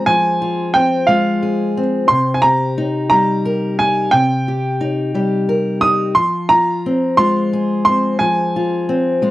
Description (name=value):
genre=acoustic folk duo or small band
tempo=59 BPM (dotted quarters)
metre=6/8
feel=straight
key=unclear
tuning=A4 = 439 Hz
part: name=bright upright piano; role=melody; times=0.0-9.2 s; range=F5 to Eb6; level=-16 LUFS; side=right 1 dB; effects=none
part: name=fingerpicked steel-string acoustic guitar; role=accompaniment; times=0.0-9.3 s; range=C3 to Bb4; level=-17 LUFS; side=left 1 dB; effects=none
room=light reverb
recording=dry, close 1970s-style studio recording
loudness=-14 LUFS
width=side -16 dB against mid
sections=0.0-9.3 A section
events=none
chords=0.0 Fm; 2.1 Cm7; 6.2 Fm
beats=| 0.06 1.07 | 2.09 3.11 | 4.13 5.15 | 6.17 7.19 | 8.21 9.23